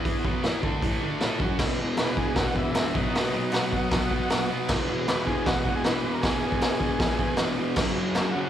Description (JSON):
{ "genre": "garage rock duo or trio", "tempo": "156 BPM", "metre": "4/4", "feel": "straight", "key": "unclear", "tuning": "A4 = 442 Hz", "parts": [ { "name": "fuzz guitar", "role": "riff", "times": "0.0-8.5 s", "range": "E2 to A4", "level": "-26 LUFS", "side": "equal", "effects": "distortion, slapback echo" }, { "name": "raw garage drum kit", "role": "drums", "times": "0.1-8.2 s", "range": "crash cymbal, hi-hat, kick drum, snare drum", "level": "-26 LUFS", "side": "equal", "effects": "none" }, { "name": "overdriven combo organ", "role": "melody", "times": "2.0-8.5 s", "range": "D#4 to B4", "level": "-32 LUFS", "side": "equal", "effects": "slapback echo" }, { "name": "group handclap", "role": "percussion", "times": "2.0-8.3 s", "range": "none", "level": "-43 LUFS", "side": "equal", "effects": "none" } ], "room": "light reverb, small room reverb", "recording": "live gig heard through the venue's PA, club reverb", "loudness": "-23 LUFS", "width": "side -10 dB against mid", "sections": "0.0-1.6 A section; 1.6-7.8 B section", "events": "none", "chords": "0.3 B5; 1.6 E5; 3.0 B; 4.7 E; 7.8 F#5", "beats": "| 0.06 0.45 0.83 1.22 | 1.60 1.99 2.37 2.76 | 3.15 3.53 3.92 4.30 | 4.69 5.07 5.46 5.85 | 6.23 6.62 7.00 7.39 | 7.78 8.16" }